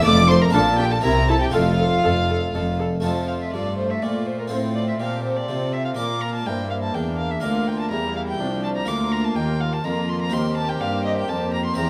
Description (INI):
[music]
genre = classical, baroque-style concerto movement with solo episodes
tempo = 124 BPM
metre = 3/4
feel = straight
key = F major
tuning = A4 = 440 Hz
[part]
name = rich chamber violin section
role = melody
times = 0.0-11.9 s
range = A4 to D6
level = -32 LUFS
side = equal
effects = none
[part]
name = warm violin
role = melody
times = 0.0-11.9 s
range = Bb4 to D6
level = -29 LUFS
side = equal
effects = none
[part]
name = warm studio violin section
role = second line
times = 0.0-11.9 s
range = D4 to D5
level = -32 LUFS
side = equal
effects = none
[part]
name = harpsichord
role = accompaniment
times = 0.0-11.9 s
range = C2 to C5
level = -30 LUFS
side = equal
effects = none
[part]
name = warm chamber viola section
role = accompaniment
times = 0.1-11.9 s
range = F3 to A4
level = -30 LUFS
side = equal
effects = none
[part]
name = warm chamber cello section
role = bass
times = 0.1-11.9 s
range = C2 to C3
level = -28 LUFS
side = equal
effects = none
[part]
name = warm chamber double bass section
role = bass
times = 0.1-3.0 s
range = F1 to C2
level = -25 LUFS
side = equal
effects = none
[sound]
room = wet recital hall reverb, RT60 1.3 s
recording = none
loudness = -22 LUFS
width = mono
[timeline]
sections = 0.0-3.0 A section; 3.0-11.9 B section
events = none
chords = 0.1 F; 0.5 Bb; 1.0 C7; 1.5 F; 4.5 F/A; 6.0 Bb; 7.4 Bb/D; 10.3 Cm7/Eb